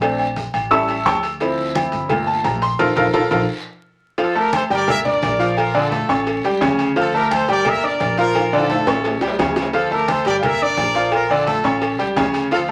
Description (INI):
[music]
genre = latin, salsa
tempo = 173 BPM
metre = 4/4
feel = straight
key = unclear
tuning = A4 = 440 Hz
[part]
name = bright concert grand piano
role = accompaniment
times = 0.0-12.7 s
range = C#3 to E6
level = -21 LUFS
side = equal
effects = none
[part]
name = upright bass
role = bass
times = 0.0-12.7 s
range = G1 to D2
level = -32 LUFS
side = equal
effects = none
[part]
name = agogo bells and timbales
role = percussion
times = 0.0-12.7 s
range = none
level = -26 LUFS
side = equal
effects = none
[part]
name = congas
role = percussion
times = 0.0-12.7 s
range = none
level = -32 LUFS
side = equal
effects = none
[part]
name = cowbell and bongos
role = percussion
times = 0.0-12.7 s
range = none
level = -30 LUFS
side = equal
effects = none
[part]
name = guiro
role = percussion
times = 0.0-12.7 s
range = none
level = -40 LUFS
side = equal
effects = none
[part]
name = bright trumpet section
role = melody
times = 4.2-12.6 s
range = F4 to F5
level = -23 LUFS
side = equal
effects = none
[sound]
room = wet studio ambience, RT60 0.5 s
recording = vinyl crackle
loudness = -18 LUFS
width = mono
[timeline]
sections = 0.0-4.2 A section; 4.2-12.7 B section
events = grand piano solo 0.0-4.2; band accent 2.8-4.2; drum fill 3.1-4.2, 8.4-9.7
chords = 0.0 Bbmaj7; 0.7 A7; 1.4 Dm7; 2.1 Gm7; 2.8 Bb5; 3.5 N.C.; 4.2 Gm9; 4.9 Gm7; 5.6 Bbmaj7; 6.3 A7; 7.0 Dm; 7.7 Gm7; 8.4 Bbmaj7; 9.0 A7; 9.7 Dm; 10.4 Gm7; 11.1 Bbmaj7; 11.8 A7